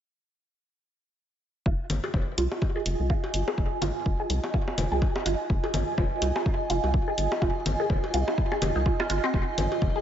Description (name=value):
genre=minimal techno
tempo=125 BPM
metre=4/4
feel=swing 58% on 16ths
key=F minor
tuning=A4 = 441 Hz
part: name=resonant blip pluck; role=riff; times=1.7-10.0 s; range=C4 to Ab4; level=-32 LUFS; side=right 1 dB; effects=phaser, lush chorus, sidechain pumping, tape echo
part: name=rubbery square bass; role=bass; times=1.7-9.9 s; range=F1 to C2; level=-29 LUFS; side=equal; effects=sidechain pumping
part: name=electronic kick drum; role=drums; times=1.7-9.9 s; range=none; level=-26 LUFS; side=equal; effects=none
part: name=granular cloud pad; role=texture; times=2.6-10.0 s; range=F4 to Bb5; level=-31 LUFS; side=right 3 dB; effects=built-in reverb, sidechain pumping
part: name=electronic hi-hat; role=drums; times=1.9-9.7 s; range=none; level=-35 LUFS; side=left 1 dB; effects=none
part: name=congas, cowbell and bongos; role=percussion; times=1.9-9.9 s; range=none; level=-34 LUFS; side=left 2 dB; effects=tape echo
room=light reverb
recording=nothing above 7.7 kHz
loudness=-24 LUFS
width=side -10 dB against mid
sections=1.7-10.0 A section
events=none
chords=1.7 Fm7